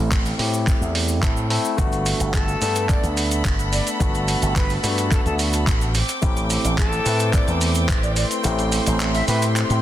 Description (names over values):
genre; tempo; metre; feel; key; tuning
nu-disco, nu disco; 108 BPM; 4/4; straight; G major; A4 = 440 Hz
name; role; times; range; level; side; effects
overdriven tine electric piano; accompaniment; 0.0-9.8 s; A3 to B4; -25 LUFS; moving between left 4 dB and right 4 dB; auto-pan, sidechain pumping, tape echo
slap bass with an envelope filter; bass; 0.0-9.8 s; G1 to A2; -22 LUFS; equal; sidechain pumping
dusty soul sampler-style drum kit; drums; 0.1-9.8 s; handclaps, hi-hat, shaker; -26 LUFS; right 2 dB; soft clipping on snare, studio reverb
electronic kick drum; drums; 0.1-8.0 s; none; -21 LUFS; equal; studio reverb
cabasa; percussion; 0.1-9.8 s; none; -36 LUFS; left 3 dB; none
clear chamber violin section; sustained chords; 1.8-9.8 s; C4 to D6; -28 LUFS; equal; sidechain pumping
bright reedy silver concert flute; melody; 2.3-9.4 s; A4 to E5; -29 LUFS; equal; tape echo
room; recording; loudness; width
light reverb, digital ambience; dense, heavily limited modern master; -18 LUFS; side -12 dB against mid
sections
0.0-9.8 A section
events
kick drops out 8.4-9.8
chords
0.0 Am7; 1.8 Gmaj9; 5.9 D7sus4/A